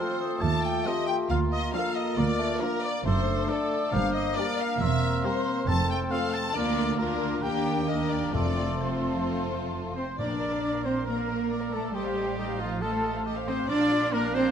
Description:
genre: classical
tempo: 137 BPM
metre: 4/4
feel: straight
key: Bb major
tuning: A4 = 443 Hz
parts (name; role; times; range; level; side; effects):
- warm symphonic violin section; melody; 0.0-14.5 s; A4 to Bb5; -34 LUFS; left 4 dB; none
- mellow clarinet; second line; 0.0-14.5 s; F4 to D5; -36 LUFS; left 1 dB; none
- mellow hollow silver concert flute; second line; 0.0-14.5 s; F5 to F6; -38 LUFS; left 2 dB; none
- warm oboe; second line; 0.0-14.5 s; D4 to A5; -36 LUFS; right 1 dB; none
- warm symphonic violin section; second line; 0.0-14.4 s; D4 to D5; -37 LUFS; left 4 dB; none
- warm bassoon; accompaniment; 0.0-9.9 s; A3 to C4; -37 LUFS; right 2 dB; none
- warm symphonic viola section; accompaniment; 0.0-14.5 s; F3 to F5; -36 LUFS; right 1 dB; none
- mellow French horn section; sustained chords; 0.0-14.5 s; F3 to F4; -33 LUFS; left 3 dB; none
- warm symphonic cello section; bass; 0.4-14.5 s; D2 to D4; -32 LUFS; right 3 dB; none
- warm symphonic double bass section; bass; 0.4-14.5 s; E1 to Eb2; -33 LUFS; right 4 dB; none
- timpani; percussion; 5.7-10.8 s; F2 to Bb2; -36 LUFS; left 1 dB; none
- brilliant trumpet; stabs; 10.0-14.5 s; F4 to D5; -34 LUFS; right 2 dB; none
room: moderate concert hall reverb, RT60 2.3 s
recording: none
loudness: -25 LUFS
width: side -8 dB against mid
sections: 0.0-10.2 A section; 10.2-14.5 B section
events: none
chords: 0.0 F7; 1.3 Bb/D; 3.1 D7/F#; 3.9 Gm; 4.8 C7/E; 5.7 F; 6.6 Bb/D; 7.4 Ebmaj7; 8.3 F; 10.2 Bb; 11.9 F7/A; 13.7 Bb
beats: 0.42 0.86 | 1.30 1.74 2.18 2.62 | 3.05 3.49 3.93 4.37 | 4.80 5.25 5.68 6.12 | 6.55 6.99 7.43 7.88 | 8.34 8.81 9.27 9.73 | 10.19 10.63 11.07 11.51 | 11.94 12.38 12.82 13.25 | 13.69 14.13

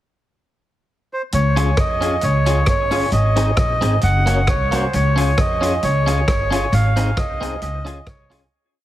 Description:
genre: ska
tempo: 134 BPM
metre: 4/4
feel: swing 55% on 8ths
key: Db major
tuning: A4 = 442 Hz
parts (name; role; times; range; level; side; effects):
- melodica; melody; 1.1-8.4 s; C5 to Gb5; -21 LUFS; right 1 dB; tape echo
- upright bass; bass; 1.3-8.4 s; Gb1 to F2; -19 LUFS; equal; none
- vintage drum kit; drums; 1.3-8.4 s; hi-hat, kick drum, rim click; -23 LUFS; equal; none
- clean electric guitar; accompaniment; 1.6-8.4 s; Bb3 to Ab4; -26 LUFS; right 2 dB; none
- percussive tonewheel organ; stabs; 1.6-8.5 s; C4 to Db5; -27 LUFS; left 4 dB; chorus vibrato, fast rotary speaker, tape echo
room: small room ambience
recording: heavily compressed radio sound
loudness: -15 LUFS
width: side -14 dB against mid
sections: 0.0-1.3 pickup bar; 1.3-8.5 A section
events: fade-out 6.7-8.5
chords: 0.0 N.C.; 1.3 Db; 3.1 Ab; 4.0 Gb; 4.9 Db; 6.7 Ab; 7.6 Db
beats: 0.43 0.88 | 1.33 1.78 2.23 2.67 | 3.12 3.58 4.02 4.47 | 4.92 5.37 5.82 6.27 | 6.72 7.17 7.62 8.07

